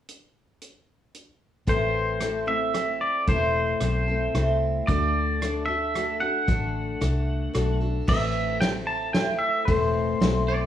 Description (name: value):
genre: honky-tonk and classic country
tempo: 113 BPM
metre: 3/4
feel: straight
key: unclear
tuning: A4 = 441 Hz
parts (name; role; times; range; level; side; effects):
- natural country drum kit; drums; 0.1-10.3 s; crash cymbal, hi-hat, kick drum, ride cymbal, rim click, snare drum; -27 LUFS; equal; none
- pedal steel guitar; melody; 1.7-10.4 s; C5 to A5; -27 LUFS; right 1 dB; none
- picked steel-string acoustic guitar; accompaniment; 1.7-10.7 s; A2 to A4; -28 LUFS; left 2 dB; none
- vintage muted fingered electric bass; bass; 1.7-10.7 s; E1 to D2; -27 LUFS; equal; none
- twangy electric guitar; second line; 10.5-10.7 s; D5; -27 LUFS; right 2 dB; lush chorus
room: moderate studio reverb, RT60 0.7 s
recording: worn, warbling old tape, cassette tape, warbly pitch drift, studio ambience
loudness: -22 LUFS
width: side -10 dB against mid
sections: 0.1-1.7 A section; 1.7-8.1 B section; 8.1-10.7 C section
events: none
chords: 0.1 N.C.; 1.7 Am; 4.9 D; 8.1 Am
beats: | 0.09 0.62 1.15 | 1.68 2.22 2.75 | 3.28 3.82 4.35 | 4.88 5.42 5.95 | 6.48 7.01 7.55 | 8.08 8.61 9.14 | 9.68 10.21